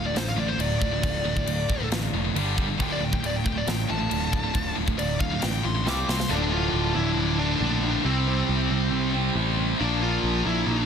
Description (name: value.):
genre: heavy metal.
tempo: 137 BPM.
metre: 4/4.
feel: straight.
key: D minor.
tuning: A4 = 440 Hz.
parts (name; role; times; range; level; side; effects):
high-gain lead guitar; melody; 0.0-10.9 s; C4 to D6; -30 LUFS; equal; distortion.
fuzz guitar; riff; 0.0-10.9 s; D2 to C5; -32 LUFS; equal; distortion.
heavy high-gain guitar; riff; 0.0-10.9 s; D2 to C4; -30 LUFS; left 14 dB; distortion.
high-gain distorted guitar; riff; 0.0-10.9 s; D2 to C4; -30 LUFS; right 11 dB; distortion.
picked electric bass; bass; 0.0-10.9 s; D1 to C2; -28 LUFS; equal; none.
tight metal drum kit; drums; 0.2-6.3 s; crash cymbal, kick drum, snare drum; -30 LUFS; equal; none.
warm chamber string section; sustained chords; 6.3-10.9 s; F3 to Bb5; -37 LUFS; left 1 dB; none.
room: little or no reverb.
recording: dense, heavily limited modern master.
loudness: -22 LUFS.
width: side -7 dB against mid.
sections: 0.0-6.3 A section; 6.3-10.9 B section.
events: lead electric guitar solo 0.0-6.3; drum fill 5.9-6.3.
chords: 0.0 Dm; 2.4 G5; 2.8 Dm; 5.9 C5; 6.3 Dm; 8.0 C; 9.8 Bb.